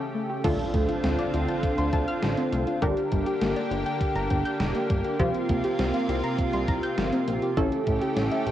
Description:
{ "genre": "synth-pop", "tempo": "101 BPM", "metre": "4/4", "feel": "straight", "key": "D minor", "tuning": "A4 = 435 Hz", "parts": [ { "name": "lush unison pad", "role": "sustained chords", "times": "0.0-8.5 s", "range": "C3 to G4", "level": "-29 LUFS", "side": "equal", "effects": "chorus, cassette tape" }, { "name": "soft round pluck", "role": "arpeggios", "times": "0.0-8.5 s", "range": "D3 to G6", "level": "-31 LUFS", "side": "left 2 dB", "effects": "chorus, cassette tape, tape echo" }, { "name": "funky polysynth comp", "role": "accompaniment", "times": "0.4-8.5 s", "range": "C4 to Bb4", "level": "-29 LUFS", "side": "right 1 dB", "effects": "chorus, cassette tape" }, { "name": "chorused synth bass", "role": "bass", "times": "0.4-8.5 s", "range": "E1 to D2", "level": "-29 LUFS", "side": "equal", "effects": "none" }, { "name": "gated 80s digital drum machine", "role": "drums", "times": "0.4-8.5 s", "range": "crash cymbal, hi-hat, kick drum, snare drum", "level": "-30 LUFS", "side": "equal", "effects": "gated reverb, gated reverb snare, cassette tape" }, { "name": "impact", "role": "sound effects", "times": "0.4-2.8 s", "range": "none", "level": "-37 LUFS", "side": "equal", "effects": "none" } ], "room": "light reverb", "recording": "home recording on cassette", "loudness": "-23 LUFS", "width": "side -12 dB against mid", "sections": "0.4-8.5 A section", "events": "break 0.0-0.4; impact 0.4-2.8", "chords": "0.4 Dm7; 2.8 Gm; 5.2 C7sus4; 7.6 A7" }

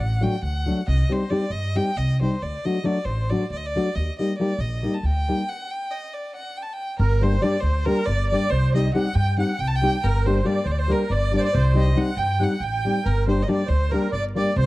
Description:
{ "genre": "balkan folk, Balkan wedding band", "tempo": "276 BPM (eighths)", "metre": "7/8", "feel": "straight", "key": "G harmonic minor", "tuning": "A4 = 440 Hz", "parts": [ { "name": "clear violin", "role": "melody", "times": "0.0-14.7 s", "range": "Bb4 to A5", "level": "-28 LUFS", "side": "equal", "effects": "none" }, { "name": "upright bass", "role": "bass", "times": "0.0-14.7 s", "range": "G1 to G2", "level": "-22 LUFS", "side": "equal", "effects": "none" }, { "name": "nylon-string guitar", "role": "accompaniment", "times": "0.2-14.5 s", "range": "F#3 to G4", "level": "-24 LUFS", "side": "left 2 dB", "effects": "none" }, { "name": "musette accordion", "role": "second line", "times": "7.0-14.7 s", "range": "Bb4 to A5", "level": "-29 LUFS", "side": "right 4 dB", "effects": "none" } ], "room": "light reverb, small room ambience", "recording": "dark, warm production, vinyl crackle", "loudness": "-20 LUFS", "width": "side -18 dB against mid", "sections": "0.0-7.0 A section; 7.0-14.7 B section", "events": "stop 5.5-7.0", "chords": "0.0 D; 0.9 Cm; 2.4 D; 3.9 Eb; 5.5 N.C.; 7.0 Gm; 8.5 Cm; 10.0 Gm; 11.5 Cm; 13.1 Gm" }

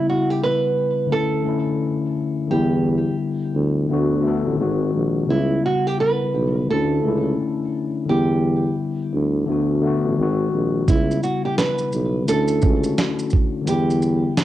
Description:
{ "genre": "lo-fi hip hop", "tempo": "86 BPM", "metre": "4/4", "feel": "swing 61% on 16ths", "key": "unclear", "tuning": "A4 = 439 Hz", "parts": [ { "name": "nylon-string guitar", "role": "melody", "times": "0.0-14.3 s", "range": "E4 to B4", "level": "-23 LUFS", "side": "right 3 dB", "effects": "low-pass filter, cassette tape, plate reverb" }, { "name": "mellow tine electric piano", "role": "accompaniment", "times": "0.0-14.4 s", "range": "C#3 to A4", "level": "-22 LUFS", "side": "left 4 dB", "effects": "cassette tape, low-pass filter, plate reverb" }, { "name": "breathy tuba", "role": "bass", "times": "2.5-14.3 s", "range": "G#1 to E2", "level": "-21 LUFS", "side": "right 2 dB", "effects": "none" }, { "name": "dusty soul sampler-style drum kit", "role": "drums", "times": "10.9-14.4 s", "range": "hi-hat, kick drum, shaker, snare drum", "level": "-20 LUFS", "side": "right 2 dB", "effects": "cassette tape" } ], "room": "moderate studio reverb, RT60 0.6 s", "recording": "home recording on cassette", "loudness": "-18 LUFS", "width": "side -13 dB against mid", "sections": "0.0-14.4 A section", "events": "break 0.0-2.5", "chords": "0.0 C#m7b5; 1.1 Aadd11/D; 2.5 Em7; 3.9 D6; 4.6 G#7; 5.3 C#m7b5; 6.7 Aadd11/C#; 8.1 Em7; 9.5 D6; 10.2 G#7; 10.9 C#m7b5; 12.3 Dmaj9/C#; 13.7 Em7" }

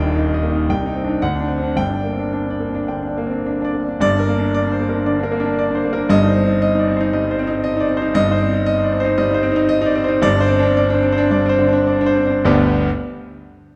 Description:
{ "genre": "classical, virtuoso piano study", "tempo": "101-119 BPM", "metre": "4/4", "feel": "rubato", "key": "G minor", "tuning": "A4 = 440 Hz", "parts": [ { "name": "clear concert grand piano", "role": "solo", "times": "0.0-12.9 s", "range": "Eb1 to G5", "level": "-18 LUFS", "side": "equal", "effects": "none" } ], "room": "moderate concert hall reverb, RT60 1.9 s", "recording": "none", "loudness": "-18 LUFS", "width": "mono", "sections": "0.0-4.0 A section; 4.0-12.5 B section; 12.5-13.8 C section", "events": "slowing down 7.1-12.5", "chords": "0.0 Eb; 0.7 Cm; 1.2 D7; 1.8 Gm; 6.1 Cm/G; 10.2 Gsus4; 12.5 G" }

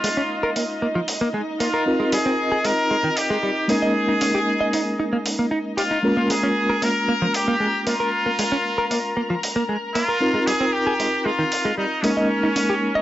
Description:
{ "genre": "nu-disco, nu disco", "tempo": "115 BPM", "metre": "4/4", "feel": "straight", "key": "Bb dorian", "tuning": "A4 = 445 Hz", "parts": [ { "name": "muted trumpet section", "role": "melody", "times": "0.0-13.0 s", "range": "Db4 to Bb4", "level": "-24 LUFS", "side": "left 1 dB", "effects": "none" }, { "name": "mellow reed electric piano", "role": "accompaniment", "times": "0.0-13.0 s", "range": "Ab3 to Bb4", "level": "-24 LUFS", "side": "equal", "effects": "fast tremolo" }, { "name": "muted studio violin section", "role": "sustained chords", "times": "0.0-13.0 s", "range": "Eb4 to Bb5", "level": "-30 LUFS", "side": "equal", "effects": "low-pass filter" }, { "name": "direct-recorded clean electric guitar", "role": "riff", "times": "0.0-13.0 s", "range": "Eb3 to Eb5", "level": "-24 LUFS", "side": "equal", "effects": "wide subtle chorus" }, { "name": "electronic hi-hat", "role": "drums", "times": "0.0-12.7 s", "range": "none", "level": "-28 LUFS", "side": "right 1 dB", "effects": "overdrive" } ], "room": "light reverb, studio reverb", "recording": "dry, gritty hardware recording, cassette tape, nothing above 7.7 kHz", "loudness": "-19 LUFS", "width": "side -14 dB against mid", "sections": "0.0-13.0 A section", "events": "filter sweep on violin section 0.0-13.0", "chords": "0.0 Bbm7; 1.9 Ab69; 3.7 Eb7sus4; 6.0 Bbm7; 10.2 Ab69; 12.0 Eb7sus4" }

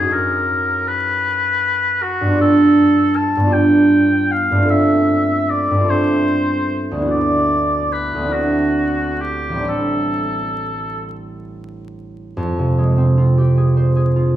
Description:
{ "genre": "classical, impressionist duo for oboe and harp", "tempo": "43-53 BPM (dotted quarters)", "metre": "6/8", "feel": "rubato", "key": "A dorian", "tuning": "A4 = 439 Hz", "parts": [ { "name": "warm oboe", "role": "melody", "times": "0.0-11.0 s", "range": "F#4 to A5", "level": "-19 LUFS", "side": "left 1 dB", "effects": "none" }, { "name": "concert harp", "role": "accompaniment", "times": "0.0-14.4 s", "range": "A1 to C5", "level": "-16 LUFS", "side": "right 1 dB", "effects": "none" } ], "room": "wet recital hall reverb, RT60 1.5 s", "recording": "heard from further back in the room, vinyl crackle", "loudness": "-14 LUFS", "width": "side -12 dB against mid", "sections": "0.0-12.4 A section; 12.4-14.4 B section", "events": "none", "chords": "0.1 B69/F#; 2.4 G9; 4.7 Fmaj7/G; 7.1 D69; 8.3 D9; 9.7 Am7; 12.4 Fmadd9" }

